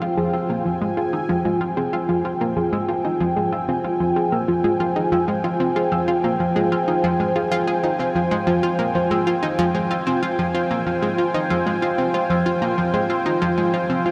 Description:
ambient, sequencer-driven space music; 94 BPM; 4/4; straight; F minor; A4 = 440 Hz
sweeping resonant pad; sustained chords; 0.0-14.1 s; F4 to Ab5; -24 LUFS; equal; chorus, shimmer reverb
analog pluck; riff; 0.0-14.1 s; F3 to Ab4; -25 LUFS; equal; chorus, delay, shimmer reverb
thumb-piano-like synth pluck; arpeggios; 0.2-14.1 s; F4 to E6; -29 LUFS; equal; chorus, delay, shimmer reverb
wet cathedral reverb, RT60 7.0 s; in a vast, echoing space; -21 LUFS; mono
0.0-14.1 A section
filter sweep on synth arpeggio sound 0.0-14.1
0.0 Fm

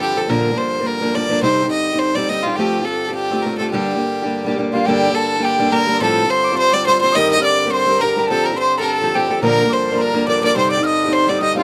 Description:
celtic folk, Celtic reel; 211 BPM; 4/4; swing 54% on 8ths; G minor; A4 = 440 Hz
clear fiddle; melody; 0.0-11.6 s; F4 to Eb5; -20 LUFS; equal
fingerpicked steel-string acoustic guitar; accompaniment; 0.0-11.6 s; G2 to Bb4; -22 LUFS; equal
accordion; drone; 0.0-11.6 s; G2 to D3; -31 LUFS; equal
mid whistle; second line; 4.7-11.6 s; F5 to F6; -24 LUFS; equal
moderate studio reverb, RT60 0.5 s; close, detailed microphones; -17 LUFS; mono
0.0-4.9 A section; 4.9-11.6 A section
0.3 Bb; 1.4 Cm; 2.6 Fadd9; 3.7 Gm; 4.9 Gmadd9; 6.0 Fadd9; 7.1 Cm7/G; 8.3 Fadd9; 9.4 Bb; 10.6 Cm

